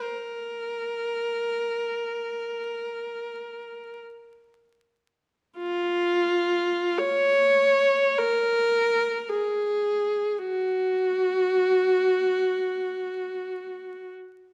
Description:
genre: classical, free, expressive piece for unaccompanied viola.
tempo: free time.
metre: none.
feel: none.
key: unclear.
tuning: A4 = 441 Hz.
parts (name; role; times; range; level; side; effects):
rich viola; solo; 0.0-14.1 s; F4 to Db5; -26 LUFS; equal; none.
room: moderate recital hall reverb, RT60 1.3 s.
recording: dark, warm production, vinyl crackle.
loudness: -25 LUFS.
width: mono.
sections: 0.0-5.6 A section; 5.6-14.5 B section.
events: none.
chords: none.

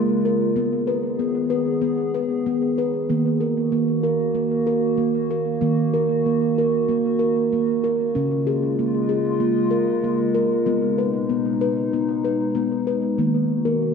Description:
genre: world meditative, meditative tuned percussion.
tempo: 95 BPM.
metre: 4/4.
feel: straight.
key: Eb minor.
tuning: A4 = 439 Hz.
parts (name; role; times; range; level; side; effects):
warbly tape-like pad; sustained chords; 0.0-13.9 s; Cb3 to Ab4; -24 LUFS; left 1 dB; chorus, built-in reverb.
steel tongue drum; arpeggios; 0.0-13.9 s; Db3 to Cb5; -20 LUFS; equal; tape echo.
room: wet echo chamber reverb, RT60 2.1 s.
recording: none.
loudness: -19 LUFS.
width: side -6 dB against mid.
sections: 0.0-13.2 A section.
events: none.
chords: 0.0 Db; 0.6 Abm; 3.1 Ebm; 8.1 Db; 10.7 Abm; 13.2 Ebm.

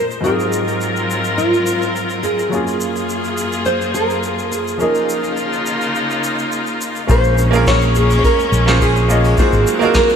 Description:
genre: sunset chillout.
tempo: 105 BPM.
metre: 4/4.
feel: straight.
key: Bb minor.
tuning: A4 = 440 Hz.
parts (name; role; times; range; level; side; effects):
nylon-string guitar; melody; 0.0-10.2 s; F4 to Db5; -19 LUFS; right 1 dB; lush chorus, digital delay.
warm concert grand piano; accompaniment; 0.0-10.2 s; Ab2 to Eb5; -21 LUFS; right 2 dB; auto-pan, digital delay.
clear chamber string section; sustained chords; 0.0-10.2 s; Gb2 to C5; -20 LUFS; left 2 dB; low-pass filter.
vintage brush drum kit; drums; 0.1-10.2 s; hi-hat, shaker, snare drum; -26 LUFS; equal; gated reverb.
mellow fretless electric bass; bass; 7.1-9.6 s; Ab1 to Bb1; -15 LUFS; equal; none.
electronic kick drum; drums; 7.1-10.1 s; none; -17 LUFS; equal; none.
room: moderate lush hall reverb, RT60 2.5 s.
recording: bright 1980s-style digital production.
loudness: -14 LUFS.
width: side -7 dB against mid.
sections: 0.0-7.1 A section; 7.1-10.2 B section.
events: none.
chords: 0.2 Ab13; 2.5 Gbmaj9; 4.8 Db69; 7.1 Bbm9; 9.4 Ab13.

